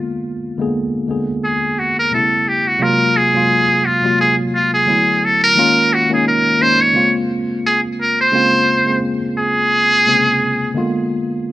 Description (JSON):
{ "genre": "R&B", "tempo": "87 BPM", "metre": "4/4", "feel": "swing 56% on 16ths", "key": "Bb minor", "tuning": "A4 = 442 Hz", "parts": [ { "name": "tine electric piano", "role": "accompaniment", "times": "0.0-11.5 s", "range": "B2 to Ab4", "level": "-18 LUFS", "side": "equal", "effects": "slow stereo tremolo" }, { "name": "trumpet with metal mute", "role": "melody", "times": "1.4-10.7 s", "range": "F4 to Db5", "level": "-14 LUFS", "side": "equal", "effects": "none" } ], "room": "moderate studio reverb, RT60 0.6 s", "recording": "rough home demo mix", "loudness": "-13 LUFS", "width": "side -16 dB against mid", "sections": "0.0-8.3 A section; 8.3-11.5 B section", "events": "muted trumpet solo 0.0-8.3", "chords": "0.0 Bb7b9; 2.1 A9; 2.8 Ab13; 4.9 D69; 5.6 Db69; 6.9 Bbm9; 10.7 Bb7b9" }